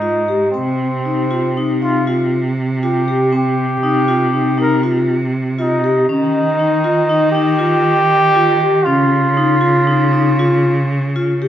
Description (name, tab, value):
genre	contemporary instrumental, chamber music in an uneven meter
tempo	237 BPM (eighths)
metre	11/8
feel	straight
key	unclear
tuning	A4 = 440 Hz
part	warm flugelhorn	melody	0.0-11.2 s	C4 to Bb4	-17 LUFS	right 2 dB	none
part	vibraphone with soft mallets	arpeggios	0.0-11.5 s	C4 to G4	-18 LUFS	left 3 dB	none
part	clear cello	bass	0.0-11.5 s	Ab2 to Eb3	-18 LUFS	right 1 dB	none
room	moderate recital hall reverb, RT60 1.4 s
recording	none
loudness	-13 LUFS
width	side -11 dB against mid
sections	0.0-11.5 A section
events	none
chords	0.0 Ab5; 0.5 Cm; 6.1 Eb; 8.9 Db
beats	0.02 0.28 | 0.54 0.80 1.06 1.31 1.57 1.82 2.08 2.33 2.58 2.84 3.09 | 3.34 3.59 3.85 4.10 4.35 4.60 4.85 5.10 5.35 5.60 5.85 | 6.10 6.35 6.60 6.85 7.10 7.35 7.60 7.86 8.11 8.36 8.61 | 8.87 9.12 9.37 9.62 9.88 10.13 10.39 10.65 10.91 11.17 11.43